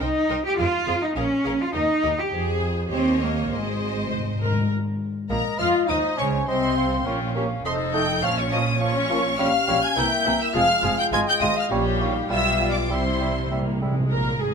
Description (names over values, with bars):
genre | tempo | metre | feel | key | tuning
quick classical-period movement for symphony orchestra | 102 BPM | 2/4 | straight | unclear | A4 = 440 Hz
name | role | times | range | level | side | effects
warm studio violin section | melody | 0.0-14.5 s | Ab4 to Ab6 | -27 LUFS | left 1 dB | none
rich studio violin section | second line | 0.0-14.5 s | Ab4 to Ab5 | -31 LUFS | left 4 dB | none
rich studio viola section | accompaniment | 0.0-14.5 s | G3 to C5 | -29 LUFS | left 1 dB | none
rich chamber cello section | bass | 0.0-14.5 s | F2 to G4 | -26 LUFS | right 1 dB | none
warm studio double bass section | bass | 0.0-14.5 s | F1 to F2 | -29 LUFS | right 3 dB | none
timpani | percussion | 3.5-4.7, 12.9-14.1 s | Ab2 to C3 | -27 LUFS | left 1 dB | none
dark cor anglais | second line | 5.3-14.0 s | Ab4 to F5 | -32 LUFS | right 3 dB | none
mellow clarinet | second line | 5.3-13.8 s | C5 to G5 | -31 LUFS | left 1 dB | none
silver concert flute | second line | 5.3-13.5 s | Bb4 to Ab5 | -30 LUFS | left 2 dB | none
warm bassoon | accompaniment | 5.3-14.0 s | E3 to F4 | -31 LUFS | right 4 dB | none
mellow French horn section | sustained chords | 5.3-13.8 s | G3 to G4 | -29 LUFS | left 7 dB | none
room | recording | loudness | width
light reverb | close, detailed microphones | -20 LUFS | side -6 dB against mid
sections
0.0-4.7 A section; 4.7-14.1 A section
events
timpani fill 3.5-4.7, 12.9-14.1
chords
0.0 Cm7; 0.6 Fm; 1.2 Bbm7; 1.7 Eb; 2.3 Fm; 2.9 Eb7; 3.5 Ab; 4.7 N.C.; 5.3 Eb5/Bb; 5.9 Dbmaj9; 7.1 Bbm; 7.7 F7; 8.2 Bbm; 9.4 Gm7b5; 10.0 C7; 10.6 Fm; 11.7 Gdim/Bb; 12.3 G7/B; 12.9 C